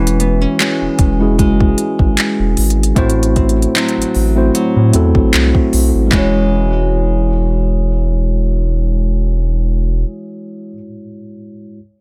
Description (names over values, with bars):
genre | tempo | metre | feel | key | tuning
contemporary R&B | 76 BPM | 4/4 | swing 54% on 16ths | E major | A4 = 440 Hz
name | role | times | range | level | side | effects
mellow tine electric piano | accompaniment | 0.0-11.8 s | G#3 to C#5 | -20 LUFS | equal | none
nylon-string guitar | arpeggios | 0.0-10.8 s | A2 to F#4 | -24 LUFS | equal | delay
round analog bass | bass | 0.0-10.0 s | E1 to A2 | -17 LUFS | equal | none
smooth R&B drum kit | drums | 0.1-6.3 s | handclaps, hi-hat, kick drum | -18 LUFS | equal | overdrive
room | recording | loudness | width
little or no reverb | none | -14 LUFS | mono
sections
0.0-6.1 A section; 6.1-9.3 B section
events
none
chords
0.0 E69; 3.0 Am6; 6.1 E69